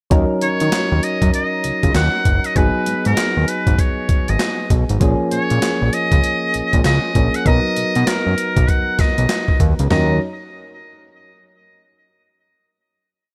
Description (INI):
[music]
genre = R&B, new jack swing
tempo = 98 BPM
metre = 4/4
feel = swing 62% on 16ths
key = Eb minor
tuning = A4 = 442 Hz
[part]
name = soft electric-piano-like synth keys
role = accompaniment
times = 0.1-10.2 s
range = F3 to Bb4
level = -24 LUFS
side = equal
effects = chorus
[part]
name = fat analog bass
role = bass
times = 0.1-10.2 s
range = Gb1 to Eb3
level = -20 LUFS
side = equal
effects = none
[part]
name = breakbeat sampler-style drum kit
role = drums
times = 0.1-10.1 s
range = handclaps, hi-hat, kick drum, snare drum, toms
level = -21 LUFS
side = equal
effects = gated reverb
[part]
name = trumpet with metal mute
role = melody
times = 0.4-10.2 s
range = Bb4 to Gb5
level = -24 LUFS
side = equal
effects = none
[sound]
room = digital ambience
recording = none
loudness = -17 LUFS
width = mono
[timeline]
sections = 0.1-9.9 verse; 9.9-12.4 final chord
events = none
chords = 0.1 Ebm7; 2.6 Abm7; 5.0 Bbm7; 7.5 Bmaj7; 9.9 Ebm7